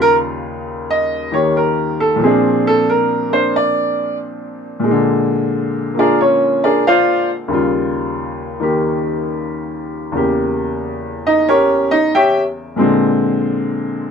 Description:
solo jazz; 91 BPM; 4/4; swing 68% on 8ths; A4 = 440 Hz
bright upright piano; solo; 0.0-14.1 s; Eb2 to G5; -14 LUFS; equal
light reverb; close, detailed microphones; -14 LUFS; side -6 dB against mid
0.0-14.1 A section
upright piano solo 0.0-14.1
0.0 Eb9; 2.2 Bb9; 7.5 Eb9; 10.1 Edim7; 12.8 Bb9
0.21 0.87 1.53 | 2.20 2.86 3.52 4.18 | 4.84 5.51 6.17 6.83 | 7.49 8.15 8.81 9.47 | 10.13 10.79 11.45 12.11 | 12.77 13.43 14.09

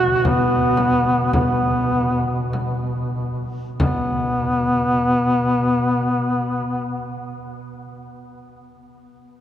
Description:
caucasian folk, Caucasian lament; 47-60 BPM; 4/4; rubato; A4 = 440 Hz
warm duduk; melody; 0.0-7.2 s; B3 to F#4; -20 LUFS; left 1 dB
mellow duduk; drone; 0.0-7.2 s; B2; -25 LUFS; equal
frame drum; percussion; 0.2-4.4 s; -26 LUFS; equal
wet cathedral reverb, RT60 5.7 s; recorded in a church or concert hall; -18 LUFS; side -10 dB against mid
0.0-3.8 A section; 3.8-8.7 B section
slowing down 0.0-3.8
0.25 1.33 2.52 | 3.79 5.06 6.27

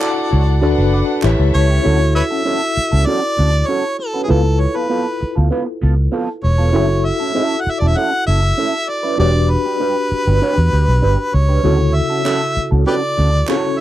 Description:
lush 1970s-style soul; 98 BPM; 4/4; straight; D major; A4 = 440 Hz
warm harmonica; melody; 0.0-13.8 s; G4 to F#5; -20 LUFS; equal
warm studio violin section; second line; 0.0-1.8 s; C#4 to F#5; -25 LUFS; left 2 dB; tape echo
tine electric piano; accompaniment; 0.0-13.8 s; C#3 to E5; -21 LUFS; left 3 dB; overdrive, fast stereo tremolo
electric guitar at the edge of break-up; riff; 0.0-13.7 s; B3 to D5; -21 LUFS; right 5 dB; wah
group handclap; percussion; 0.0-1.4, 12.3-13.6 s; -27 LUFS; right 4 dB
vintage muted fingered electric bass; bass; 0.3-13.4 s; E1 to E2; -14 LUFS; equal
little or no reverb; dry, close 1970s-style studio recording; -14 LUFS; side -13 dB against mid
0.0-1.8 A section; 1.8-13.8 B section
0.0 Dmaj9; 0.6 Bm7; 1.2 A7; 1.8 Dmaj7; 4.3 C#7alt; 6.7 F#m7; 9.2 Em7; 11.6 Dmaj7
0.01 0.62 1.23 | 1.84 2.46 3.07 3.68 | 4.29 4.90 5.52 6.13 | 6.74 7.35 7.97 8.58 | 9.19 9.80 10.42 11.03 | 11.64 12.26 12.87 13.48

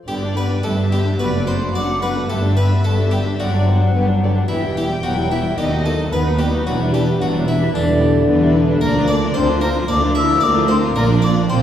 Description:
cinematic; 110 BPM; 4/4; straight; G major; A4 = 437 Hz
harpsichord; melody; 0.1-11.6 s; D4 to E5; -28 LUFS; left 1 dB
warm studio violin section; melody; 0.1-11.6 s; D4 to G4; -27 LUFS; left 5 dB
mellow silver concert flute; second line; 0.1-11.6 s; D5 to E6; -24 LUFS; left 2 dB
warm studio violin section; second line; 0.1-11.6 s; G4 to G5; -27 LUFS; left 3 dB
clear studio viola section; accompaniment; 0.1-11.6 s; D3 to D#4; -24 LUFS; right 1 dB
warm French horn section; sustained chords; 0.1-11.6 s; D3 to E4; -23 LUFS; left 2 dB
rich studio double bass section; bass; 0.1-11.6 s; E1 to D#2; -21 LUFS; right 2 dB
warm studio cello section; bass; 0.1-11.6 s; D2 to Bb2; -21 LUFS; right 1 dB
wet scoring stage reverb, RT60 1.8 s; heard from further back in the room; -15 LUFS; side -10 dB against mid
0.1-11.6 A section
0.1 G; 1.2 D/F#; 2.3 G; 4.5 Em; 5.6 B/D#; 6.7 Em7; 8.8 Bb/D; 11.0 Bb
| 0.08 0.64 1.19 1.74 | 2.29 2.84 3.39 3.94 | 4.49 5.03 5.58 6.12 | 6.66 7.20 7.74 8.27 | 8.81 9.36 9.89 10.42 | 10.96 11.50

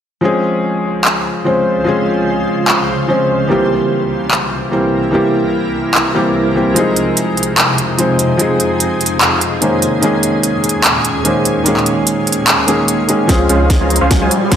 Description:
future bass; 147 BPM; 4/4; swing 54% on 16ths, half-time; Db lydian; A4 = 441 Hz
felt-muted upright piano; accompaniment; 0.2-14.6 s; Eb3 to C5; -14 LUFS; equal; sidechain pumping, dub echo
shimmering ambient pad; sustained chords; 1.2-14.6 s; C2 to C6; -20 LUFS; equal; chorus, built-in reverb, sidechain pumping
trap drum kit; drums; 1.0-14.6 s; handclaps, hi-hat, snare drum; -15 LUFS; equal; high-pass filter on snare, small room ambience, high-pass filter on hats
supersaw stab; riff; 13.3-14.6 s; Ab3 to Bb5; -16 LUFS; right 1 dB; sidechain pumping, low-pass filter
saturated sub bass; bass; 13.3-14.6 s; Db2; -16 LUFS; equal; sidechain pumping
electronic kick drum; drums; 13.3-14.6 s; -13 LUFS; equal; small room ambience
riser; sound effects; 13.8-14.6 s; -19 LUFS; equal
moderate lush hall reverb, RT60 2.0 s; -11 LUFS; side -9 dB against mid
0.2-13.3 A section; 13.3-14.6 B section
build-up 13.3-14.6; drum fill 13.3-14.6; filter sweep on supersaw synth 13.3-14.6; riser 13.8-14.6
0.2 Dbmaj7; 3.5 C7; 6.8 Fm7; 9.8 Eb7sus4; 13.3 Dbmaj7
| 0.23 0.64 1.05 1.46 | 1.86 2.27 2.68 3.09 | 3.50 3.90 4.31 4.72 | 5.13 5.54 5.95 6.35 | 6.76 7.17 7.58 7.99 | 8.39 8.80 9.21 9.62 | 10.03 10.44 10.84 11.25 | 11.66 12.07 12.48 12.88 | 13.29 13.70 14.11 14.52

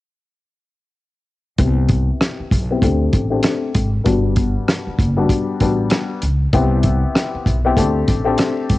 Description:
hip hop, boom-bap hip-hop; 97 BPM; 4/4; swing 60% on 16ths; G major; A4 = 438 Hz
clear upright piano; accompaniment; 1.6-8.8 s; G3 to G4; -20 LUFS; left 4 dB; cassette tape, high-pass filter, low-pass filter
upright bass; bass; 1.6-8.8 s; F#1 to D2; -19 LUFS; equal
warm soul drum kit; drums; 1.6-8.8 s; hi-hat, kick drum, rim click, snare drum; -19 LUFS; equal; cassette tape
small room ambience; home recording on cassette; -15 LUFS; side -17 dB against mid
1.6-8.8 A section
filter sweep on upright piano 1.6-8.8
1.6 Cmaj7; 2.8 D7sus4; 4.1 Gmaj7; 6.5 Cmaj7; 7.8 D7sus4
| 1.58 2.20 2.82 3.44 | 4.06 4.68 5.30 5.92 | 6.53 7.15 7.77 8.39

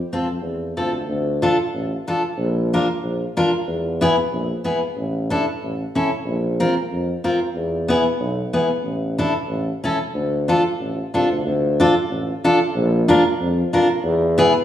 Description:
alpine folk, alpine dance band; 93 BPM; 2/4; swing 53% on 8ths; D minor; A4 = 440 Hz
fingerpicked steel-string acoustic guitar; accompaniment; 0.1-14.5 s; B3 to Bb4; -19 LUFS; left 1 dB
warm tuba; bass; 0.1-14.5 s; A1 to F2; -22 LUFS; equal
wet recital hall reverb, RT60 1.5 s; recorded in a church or concert hall, small room ambience; -18 LUFS; side -11 dB against mid
0.0-1.1 A section; 1.1-11.4 B section; 11.4-14.6 B section
0.0 F; 1.1 Dm; 2.4 Bb; 3.7 E; 5.0 Asus4; 5.6 A; 6.3 Bbsus2; 7.6 E; 8.8 Asus4; 9.5 A; 10.1 Dm; 12.8 Bb; 14.0 E
0.43 | 1.09 1.74 | 2.38 3.03 | 3.67 4.31 | 4.96 5.61 | 6.26 6.91 | 7.56 8.20 | 8.85 9.49 | 10.14 10.79 | 11.45 12.10 | 12.75 13.39 | 14.04

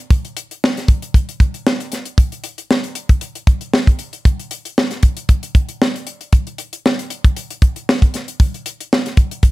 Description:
pop; 116 BPM; 4/4; swing 54% on 16ths
tight funk drum kit; drums; 0.1-9.5 s; hi-hat, kick drum, snare drum; -14 LUFS; equal
light reverb; -15 LUFS; side -19 dB against mid
0.0-9.5 A section
| 0.10 0.62 1.14 1.66 | 2.18 2.70 3.22 3.74 | 4.26 4.77 5.29 5.81 | 6.33 6.85 7.36 7.88 | 8.40 8.92 9.43

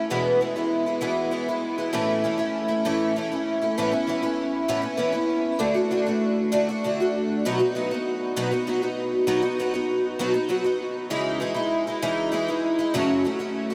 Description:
rock; 65 BPM (dotted quarters); 6/8; straight; A4 = 439 Hz
picked twelve-string acoustic guitar; solo; 0.0-13.7 s; E2 to F#4; -25 LUFS; equal; analog chorus, delay
wet huge ambient reverb, RT60 7.0 s; dreamy mix soaked in reverb; -25 LUFS; mono
0.0-3.8 A section; 3.8-11.1 B section; 11.1-13.7 C section
0.1 E; 1.9 A; 3.8 Aadd9; 5.6 D; 7.4 B; 11.1 C#madd9; 13.0 F#m
| 0.09 1.01 | 1.93 2.85 | 3.77 4.68 | 5.60 6.52 | 7.44 8.36 | 9.28 10.20 | 11.11 12.03 | 12.95

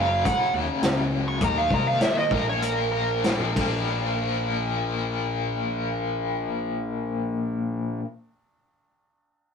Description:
classic rock; 91-106 BPM; 4/4; straight; A4 = 435 Hz
smooth overdriven lead guitar; melody; 0.0-3.2 s; Bb4 to Db6; -26 LUFS; right 2 dB; analog delay
overdriven electric guitar; riff; 0.0-8.0 s; Gb2 to Eb4; -27 LUFS; left 4 dB; tremolo
fuzz picked electric bass; bass; 0.0-8.0 s; Gb1 to Eb2; -30 LUFS; equal; overdrive
vintage drum kit; drums; 0.3-3.7 s; hi-hat, kick drum, ride cymbal, snare drum; -28 LUFS; equal
moderate studio ambience, RT60 0.5 s; rough rehearsal-room recording, warm saturation; -23 LUFS; side -6 dB against mid
0.0-3.9 A section; 3.9-6.5 B section
slowing down 0.0-3.9; lead electric guitar solo 0.0-3.9
0.0 Gb; 1.4 Eb5; 2.3 Bb5
0.24 0.82 | 1.40 2.00 2.61 3.24 | 3.89 4.55 5.21 5.87

